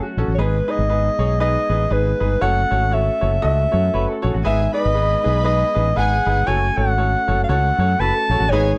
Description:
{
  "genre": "soul",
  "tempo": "118 BPM",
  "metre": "4/4",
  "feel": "swing 58% on 8ths",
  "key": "F# dorian",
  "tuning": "A4 = 439 Hz",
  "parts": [
    { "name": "warm alto saxophone", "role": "melody", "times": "0.0-8.8 s", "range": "A4 to A5", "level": "-22 LUFS", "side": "equal", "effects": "none" },
    { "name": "bright upright piano", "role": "accompaniment", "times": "0.0-8.8 s", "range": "G#2 to D#5", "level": "-28 LUFS", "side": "equal", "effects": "none" },
    { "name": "bright tonewheel organ", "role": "sustained chords", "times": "0.0-8.8 s", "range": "F#3 to A4", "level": "-32 LUFS", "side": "equal", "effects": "slow rotary speaker, overdrive" },
    { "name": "electric guitar through a small old amp", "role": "riff", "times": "0.0-0.4, 3.9-4.6, 8.0-8.6 s", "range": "F#4 to B4", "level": "-32 LUFS", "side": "equal", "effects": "none" },
    { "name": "mellow fretless electric bass", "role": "bass", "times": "0.2-8.7 s", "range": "F#1 to F#2", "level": "-22 LUFS", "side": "equal", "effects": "none" },
    { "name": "warm studio violin section", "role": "second line", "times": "4.4-8.7 s", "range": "G#4 to B5", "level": "-30 LUFS", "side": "equal", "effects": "none" }
  ],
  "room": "little or no reverb",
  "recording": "none",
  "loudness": "-19 LUFS",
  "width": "mono",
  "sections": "0.0-8.8 A section",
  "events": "none",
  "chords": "0.4 G#m; 2.4 F#m; 4.4 G#m; 6.5 F#m",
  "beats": "| 0.39 0.90 1.40 1.91 | 2.42 2.92 3.43 3.94 | 4.45 4.95 5.46 5.97 | 6.48 6.98 7.49 8.00 | 8.51"
}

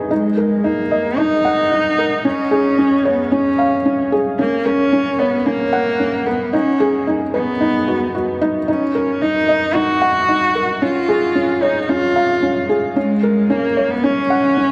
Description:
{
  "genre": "electronica",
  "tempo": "112 BPM",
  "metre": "4/4",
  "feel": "straight",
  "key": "Eb minor",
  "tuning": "A4 = 440 Hz",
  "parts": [
    { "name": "felt-muted upright piano", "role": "riff", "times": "0.0-14.7 s", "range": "Db4 to Gb5", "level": "-20 LUFS", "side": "equal", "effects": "none" },
    { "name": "dark cello", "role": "melody", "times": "0.1-14.7 s", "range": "Ab3 to Gb4", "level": "-20 LUFS", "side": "equal", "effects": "none" }
  ],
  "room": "moderate huge ambient reverb, RT60 8.0 s",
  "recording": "dark, warm production",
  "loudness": "-17 LUFS",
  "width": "mono",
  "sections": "0.1-14.7 A section",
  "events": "drop 0.1-14.7",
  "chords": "0.1 Ebm; 2.3 Db; 4.4 Gb; 6.5 Abm7; 8.7 Ebm; 10.8 Db; 13.0 Gb",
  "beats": "| 0.11 0.64 1.18 1.72 | 2.25 2.79 3.32 3.86 | 4.39 4.93 5.46 6.00 | 6.54 7.07 7.61 8.14 | 8.68 9.21 9.75 10.29 | 10.82 11.36 11.89 12.43 | 12.96 13.50 14.04 14.57"
}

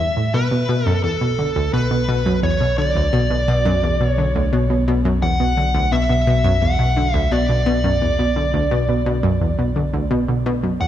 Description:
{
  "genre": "ambient, sequencer-driven space music",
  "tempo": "86 BPM",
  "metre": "4/4",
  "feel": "straight",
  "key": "B minor",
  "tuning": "A4 = 440 Hz",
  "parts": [
    { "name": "smooth overdriven lead guitar", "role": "melody", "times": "0.0-10.9 s", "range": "A4 to F#5", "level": "-22 LUFS", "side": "equal", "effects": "ping-pong delay" },
    { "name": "analog pluck", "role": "riff", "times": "0.0-10.9 s", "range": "D2 to D3", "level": "-18 LUFS", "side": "equal", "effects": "chorus, ping-pong delay" },
    { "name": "round analog bass", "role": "bass", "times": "0.0-10.9 s", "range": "B1 to E2", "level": "-23 LUFS", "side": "equal", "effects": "none" }
  ],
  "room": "moderate concert hall reverb, RT60 2.2 s",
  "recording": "none",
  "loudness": "-16 LUFS",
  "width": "side -11 dB against mid",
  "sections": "0.0-10.9 A section",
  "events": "none",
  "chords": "0.3 Bm",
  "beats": "| 0.34 1.04 1.73 2.43 | 3.13 3.83 4.53 5.22 | 5.92 6.62 7.32 8.01 | 8.71 9.41 10.11 10.80"
}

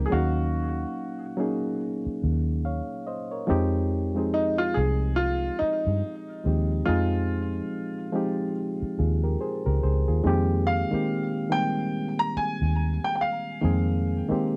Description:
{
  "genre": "R&B, neo-soul",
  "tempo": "71 BPM",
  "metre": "4/4",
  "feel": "swing 59% on 16ths",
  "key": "F phrygian, F minor from 10.3 s",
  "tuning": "A4 = 442 Hz",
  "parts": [
    { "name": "clear baby grand piano", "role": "melody", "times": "0.0-14.4 s", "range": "Eb4 to Bb5", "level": "-31 LUFS", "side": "equal", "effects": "none" },
    { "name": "reed electric piano", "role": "accompaniment", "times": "0.0-14.6 s", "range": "Eb3 to F5", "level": "-30 LUFS", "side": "equal", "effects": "none" },
    { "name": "vintage muted fingered electric bass", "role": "bass", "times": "0.0-14.3 s", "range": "C2 to G2", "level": "-28 LUFS", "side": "equal", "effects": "none" }
  ],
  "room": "little or no reverb",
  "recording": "dry, close 1970s-style studio recording",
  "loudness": "-26 LUFS",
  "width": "mono",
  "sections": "0.0-10.3 A section; 10.3-14.6 B section",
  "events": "none",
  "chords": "0.1 Ebm9; 3.5 Fm9; 10.3 Fm11",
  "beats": "| 0.11 0.96 1.80 2.65 | 3.49 4.34 5.18 6.03 | 6.87 7.72 8.56 9.41 | 10.25 11.10 11.94 12.79 | 13.63 14.48"
}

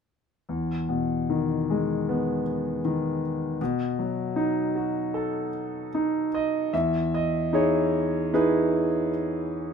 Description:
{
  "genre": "classical, lyrical solo piano",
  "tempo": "76 BPM",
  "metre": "4/4",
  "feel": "rubato",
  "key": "E major",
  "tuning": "A4 = 440 Hz",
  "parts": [
    { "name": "clear concert grand piano", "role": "solo", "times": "0.5-9.7 s", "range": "E2 to E5", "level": "-24 LUFS", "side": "equal", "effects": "none" }
  ],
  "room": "light reverb",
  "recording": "minimal, uncompressed stereo recording",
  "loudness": "-24 LUFS",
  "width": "side -6 dB against mid",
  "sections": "0.5-6.7 A section; 6.7-9.7 B section",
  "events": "none",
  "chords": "0.5 Emaj7; 3.6 B7; 6.7 Emaj7",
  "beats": "| 0.49 1.29 2.08 2.85 | 3.60 4.36 5.13 5.92 | 6.72 7.52 8.32 9.11"
}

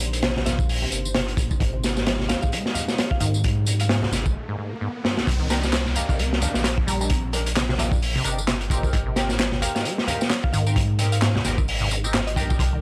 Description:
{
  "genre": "breakbeat, breaks",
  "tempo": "131 BPM",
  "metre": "4/4",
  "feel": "swing 58% on 16ths",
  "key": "unclear",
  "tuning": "A4 = 439 Hz",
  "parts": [
    { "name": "dark analog pad", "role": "sustained chords", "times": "0.0-4.3 s", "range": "Ab3 to C5", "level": "-38 LUFS", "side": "equal", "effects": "chorus, sidechain pumping" },
    { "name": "deep acid bass", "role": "riff", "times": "0.0-12.8 s", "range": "Ab1 to C4", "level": "-34 LUFS", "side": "equal", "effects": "analog delay" },
    { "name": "saturated sub bass", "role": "bass", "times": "0.0-12.8 s", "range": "G1 to Ab2", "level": "-28 LUFS", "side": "equal", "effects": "none" },
    { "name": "crunchy breakbeat drum kit", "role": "drums", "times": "0.0-12.7 s", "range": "hi-hat, kick drum, snare drum", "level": "-26 LUFS", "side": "equal", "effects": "none" },
    { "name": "electronic tambourine and handclaps", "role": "drums", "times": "0.0-12.7 s", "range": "none", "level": "-34 LUFS", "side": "equal", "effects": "none" },
    { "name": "congas", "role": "percussion", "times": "0.4-11.9 s", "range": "none", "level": "-36 LUFS", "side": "equal", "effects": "none" },
    { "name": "mallet-like synth pluck", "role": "melody", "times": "0.5-12.6 s", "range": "Eb5 to Bb5", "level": "-38 LUFS", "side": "equal", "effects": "chorus, telephone sound, analog delay" },
    { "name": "riser and downlifter", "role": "sound effects", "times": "3.4-8.9 s", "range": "none", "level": "-39 LUFS", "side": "equal", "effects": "none" },
    { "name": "band-passed chord stab", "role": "stabs", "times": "5.5-12.8 s", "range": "C4 to Bb4", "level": "-34 LUFS", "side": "equal", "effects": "phaser, lush chorus, analog delay" }
  ],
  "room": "little or no reverb",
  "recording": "dry, gritty hardware recording, vinyl crackle",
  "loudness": "-23 LUFS",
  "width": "mono",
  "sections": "0.0-5.3 A section; 5.3-12.8 B section",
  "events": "filter sweep on acid bass 0.0-5.3; riser 3.4-5.3; break 4.4-5.3; drum fill 5.0; drop 5.3-12.8",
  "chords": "0.0 Cm9; 1.6 Abmaj7; 5.3 Cm9; 8.9 Abmaj7",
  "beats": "0.23 0.69 1.15 | 1.61 2.06 2.52 2.98 | 3.44 3.90 4.35 4.81 | 5.27 5.73 6.19 6.64 | 7.10 7.56 8.02 8.48 | 8.93 9.39 9.85 10.31 | 10.77 11.22 11.68 12.14 | 12.60"
}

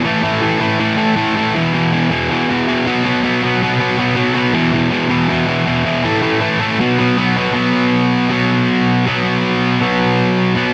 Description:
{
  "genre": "punk",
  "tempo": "160 BPM",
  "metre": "4/4",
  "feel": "straight",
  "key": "unclear",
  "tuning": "A4 = 438 Hz",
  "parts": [
    { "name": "distorted electric guitar", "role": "solo", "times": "0.0-10.7 s", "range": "E2 to B3", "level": "-15 LUFS", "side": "equal", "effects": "distortion" }
  ],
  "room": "moderate studio reverb, RT60 0.9 s",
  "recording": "dense, heavily limited modern master",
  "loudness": "-15 LUFS",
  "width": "mono",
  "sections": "0.0-7.5 A section; 7.5-10.7 B section",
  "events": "none",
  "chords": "0.0 A5; 1.5 E5; 2.9 B5; 4.5 E5; 6.0 A5; 6.8 B5",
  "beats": "| 0.04 0.41 0.79 1.17 | 1.54 1.92 2.29 2.67 | 3.04 3.42 3.79 4.17 | 4.55 4.92 5.30 5.67 | 6.05 6.42 6.80 7.17 | 7.55 7.92 8.30 8.68 | 9.05 9.43 9.80 10.18 | 10.56"
}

